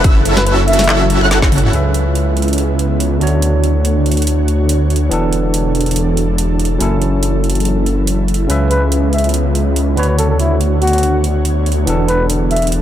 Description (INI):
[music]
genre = future bass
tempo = 142 BPM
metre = 4/4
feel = swing 54% on 16ths, half-time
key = F# minor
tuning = A4 = 444 Hz
[part]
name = ethereal airy pad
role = sustained chords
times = 0.0-12.8 s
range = C#3 to C#5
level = -23 LUFS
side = equal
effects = ensemble chorus, built-in reverb, sidechain pumping
[part]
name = wide unison pluck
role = arpeggios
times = 0.0-1.7 s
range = E6 to F#6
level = -26 LUFS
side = equal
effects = sidechain pumping, dub echo
[part]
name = supersaw chords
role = riff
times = 0.0-1.7 s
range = C#4 to F#5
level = -20 LUFS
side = right 1 dB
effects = sidechain pumping, low-pass filter, dub echo
[part]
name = wide detuned saw bass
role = bass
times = 0.0-12.8 s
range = E1 to D2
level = -15 LUFS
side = equal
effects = chorus, sidechain pumping
[part]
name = electronic kick drum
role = drums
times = 0.0-1.5 s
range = none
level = -12 LUFS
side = equal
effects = none
[part]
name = trap drum kit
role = drums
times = 0.0-12.8 s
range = handclaps, hi-hat, snare drum, toms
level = -21 LUFS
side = right 1 dB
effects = none
[part]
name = trumpet with bucket mute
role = melody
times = 0.4-1.1, 8.7-12.7 s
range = E4 to E5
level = -20 LUFS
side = left 1 dB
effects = sidechain pumping, dub echo
[part]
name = barky tine electric piano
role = accompaniment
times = 1.7-12.8 s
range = C#3 to E5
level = -19 LUFS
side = right 2 dB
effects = auto-pan, sidechain pumping, dub echo
[sound]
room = digital ambience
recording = none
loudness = -12 LUFS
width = side -11 dB against mid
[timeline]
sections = 0.0-1.7 A section; 1.7-12.8 B section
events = drop 0.0-1.7; drum fill 1.3-1.7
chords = 0.0 F#m7; 1.7 C#m7; 3.2 Dmaj7; 5.1 E7sus4; 6.8 F#m7; 8.5 C#m7; 10.0 Dmaj7; 11.9 E7sus4